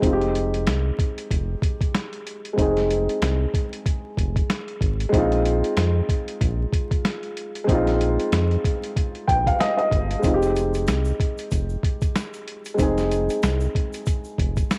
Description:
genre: hip hop, boom-bap hip-hop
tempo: 94 BPM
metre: 4/4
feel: swing 58% on 16ths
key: F minor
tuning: A4 = 441 Hz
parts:
  - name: dark upright piano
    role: accompaniment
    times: 0.0-14.8 s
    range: Ab3 to G5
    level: -27 LUFS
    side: equal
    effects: high-pass filter, low-pass filter, cassette tape
  - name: round analog bass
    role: bass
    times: 0.0-14.6 s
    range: F1 to F2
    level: -26 LUFS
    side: equal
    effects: tube saturation
  - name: boom bap sampler-style drum kit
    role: drums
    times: 0.0-14.8 s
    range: hi-hat, kick drum, snare drum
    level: -27 LUFS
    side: equal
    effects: cassette tape
  - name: tube shaker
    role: percussion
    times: 10.2-14.8 s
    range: none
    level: -49 LUFS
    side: equal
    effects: none
room: light reverb, small room ambience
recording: home recording on cassette, vinyl crackle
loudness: -23 LUFS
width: mono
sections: 0.0-10.2 A section; 10.2-14.8 A section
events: none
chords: 0.0 Fm7; 5.1 Bb9sus4; 10.2 Fm7

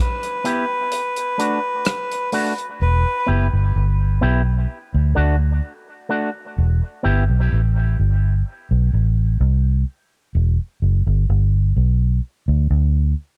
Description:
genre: dub reggae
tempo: 64 BPM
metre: 4/4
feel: straight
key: E minor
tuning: A4 = 440 Hz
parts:
  - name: melodica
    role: melody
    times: 0.0-3.3 s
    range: B4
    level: -26 LUFS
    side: equal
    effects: dub echo
  - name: damped 70s drum kit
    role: drums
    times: 0.2-2.8 s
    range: hi-hat, rim click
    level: -25 LUFS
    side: equal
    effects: none
  - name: electric guitar with an envelope filter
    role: accompaniment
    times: 0.4-7.2 s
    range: A3 to G4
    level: -28 LUFS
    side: equal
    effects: dub echo
  - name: vintage muted fingered electric bass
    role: bass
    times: 2.8-13.1 s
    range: E1 to D2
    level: -18 LUFS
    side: equal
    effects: none
room: studio ambience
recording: none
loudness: -20 LUFS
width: mono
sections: 0.0-2.8 A section; 2.8-13.4 B section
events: break 0.0-2.8; kick muted 0.9-2.8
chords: 0.0 Em; 0.9 D; 2.8 Em; 4.7 D; 6.6 Em; 8.4 Amadd9; 10.3 Em; 12.2 N.C.

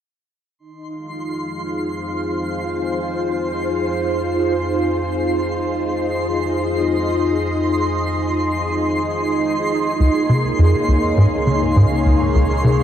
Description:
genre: ambient, sequencer-driven space music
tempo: free time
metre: none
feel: none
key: F minor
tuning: A4 = 440 Hz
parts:
  - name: string machine, full ensemble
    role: sustained chords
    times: 0.6-12.8 s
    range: Bb3 to F5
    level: -20 LUFS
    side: equal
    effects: phaser, ensemble chorus
  - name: analog drone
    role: bass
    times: 1.6-12.8 s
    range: Db2 to F2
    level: -27 LUFS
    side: equal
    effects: chorus
  - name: twinkling granular texture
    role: texture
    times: 0.8-12.8 s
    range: C6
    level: -26 LUFS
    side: right 1 dB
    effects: built-in reverb
  - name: tight sequencer bass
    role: riff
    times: 10.0-12.8 s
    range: Db2 to Db3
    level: -15 LUFS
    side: equal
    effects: ensemble chorus, tape echo
room: wet huge ambient reverb, RT60 7.5 s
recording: dark, warm production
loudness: -17 LUFS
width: side -10 dB against mid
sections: 0.6-12.8 A section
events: fade-in on synth drone 0.6-12.8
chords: 0.6 Fm7; 10.0 Dbmaj7

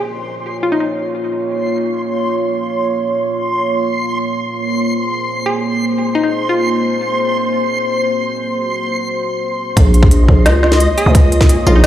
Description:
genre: half-time drum and bass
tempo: free time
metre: none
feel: none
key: Bb minor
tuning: A4 = 441 Hz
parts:
  - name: hollow square pluck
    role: melody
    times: 0.0-0.9, 5.5-6.8, 11.0-11.9 s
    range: Eb4 to Ab4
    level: -21 LUFS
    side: left 1 dB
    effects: chorus, tape echo
  - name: deep dark ambient pad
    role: sustained chords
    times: 0.0-11.9 s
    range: Bb3 to Db5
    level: -18 LUFS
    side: equal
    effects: chorus, built-in reverb, sidechain pumping
  - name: backwards swelling texture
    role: texture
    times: 0.1-11.9 s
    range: Eb5 to C6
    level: -22 LUFS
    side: right 1 dB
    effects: built-in reverb
  - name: growling 808-style bass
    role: bass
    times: 9.8-11.9 s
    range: Bb1 to Db2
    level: -11 LUFS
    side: equal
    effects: none
  - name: electronic kick drum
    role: drums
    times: 9.8-11.5 s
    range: none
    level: -9 LUFS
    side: equal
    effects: overdrive
  - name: organic electronic drum kit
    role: drums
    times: 9.8-11.9 s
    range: hi-hat, snare drum, tambourine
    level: -18 LUFS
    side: equal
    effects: overdrive, low-pass filter on hats, low-pass filter on snare, low-pass filter on perc, low-pass filter on toms, low-pass filter on room
room: moderate huge ambient reverb, RT60 7.4 s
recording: played on a big sound system in a bare room, large studio reverb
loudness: -13 LUFS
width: side -12 dB against mid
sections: 0.0-9.8 A section; 9.8-11.9 B section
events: drop 9.8-11.9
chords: 0.0 Bbm; 4.3 Abadd9/Bb; 9.8 Bbm

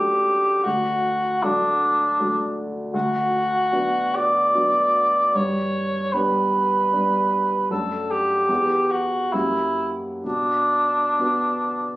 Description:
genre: classical, romantic duo for cor anglais and grand piano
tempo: 63-81 BPM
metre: 3/4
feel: rubato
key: B minor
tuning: A4 = 439 Hz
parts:
  - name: dark cor anglais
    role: melody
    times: 0.0-12.0 s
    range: D4 to D5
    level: -20 LUFS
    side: equal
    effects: none
  - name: warm baby grand piano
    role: accompaniment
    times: 0.0-12.0 s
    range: D2 to G4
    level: -26 LUFS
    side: equal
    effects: none
room: little or no reverb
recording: recorded on a phone in the room, club reverb, compression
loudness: -19 LUFS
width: side -18 dB against mid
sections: 0.0-12.0 A section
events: none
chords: 0.0 D/F#; 0.6 D; 2.9 Bm/D; 5.3 G; 7.7 D/F#; 8.5 Em; 9.3 F#7b9; 10.2 Bm

